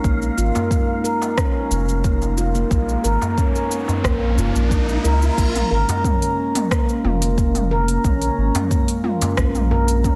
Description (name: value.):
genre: organic downtempo.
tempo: 90 BPM.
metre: 4/4.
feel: straight.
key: Bb minor.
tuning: A4 = 441 Hz.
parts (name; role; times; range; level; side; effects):
warbly tape-like pad; sustained chords; 0.0-10.2 s; Ab3 to Eb4; -31 LUFS; equal; chorus, built-in reverb, sidechain pumping, shimmer reverb.
handpan; arpeggios; 0.0-10.1 s; Bb3 to Bb4; -24 LUFS; equal; digital delay, shimmer reverb.
round analog bass; bass; 0.0-10.2 s; F1 to Db2; -23 LUFS; equal; sidechain pumping.
electronic kick drum; drums; 0.0-10.2 s; none; -23 LUFS; equal; none.
organic electronic drum kit; drums; 0.0-10.2 s; cabasa, crash cymbal, hi-hat, rim click, toms; -28 LUFS; equal; overdrive.
riser; sound effects; 2.2-5.4 s; none; -33 LUFS; equal; none.
wind-like tuned noise texture; texture; 0.0-5.4 s; F5; -39 LUFS; equal; built-in reverb, shimmer reverb.
darbuka; percussion; 0.6-9.8 s; none; -29 LUFS; equal; none.
room: light reverb, digital ambience.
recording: dense, heavily limited modern master.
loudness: -19 LUFS.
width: mono.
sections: 0.0-5.4 A section; 5.4-10.2 B section.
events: riser 2.2-5.4.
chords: 0.0 Bb7(no3); 5.4 Bbm7.